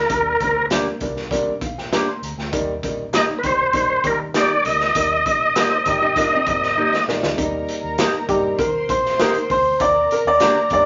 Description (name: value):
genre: uptempo 1960s-style soul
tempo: 99 BPM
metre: 4/4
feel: straight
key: Eb major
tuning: A4 = 440 Hz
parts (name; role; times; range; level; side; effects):
- tonewheel organ; melody; 0.0-7.0 s; Bb4 to Eb5; -20 LUFS; equal; chorus vibrato, fast rotary speaker
- vintage muted fingered electric bass; bass; 0.0-10.9 s; G1 to Eb3; -38 LUFS; equal; none
- clear upright piano; accompaniment; 0.1-10.9 s; G3 to C6; -24 LUFS; equal; none
- raw garage drum kit; drums; 0.1-10.9 s; hi-hat, kick drum, snare drum; -28 LUFS; equal; none
- mellow electric guitar; stabs; 0.7-10.6 s; Bb3 to G4; -25 LUFS; equal; none
- hollow-body jazz guitar; riff; 5.7-7.2 s; C4 to C5; -31 LUFS; equal; none
- muted studio string section; second line; 7.4-10.9 s; Bb4 to C6; -31 LUFS; equal; none
room: wet club reverb, RT60 0.5 s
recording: nothing above 7.6 kHz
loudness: -19 LUFS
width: mono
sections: 0.0-7.4 A section; 7.4-10.9 B section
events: drum fill 6.8-7.4; upright piano solo 7.4-10.9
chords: 0.1 Gm; 5.0 Eb; 9.8 Gm/Eb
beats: | 0.10 0.71 1.31 1.92 | 2.53 3.13 3.74 4.35 | 4.96 5.56 6.17 6.77 | 7.38 7.99 8.59 9.20 | 9.80 10.41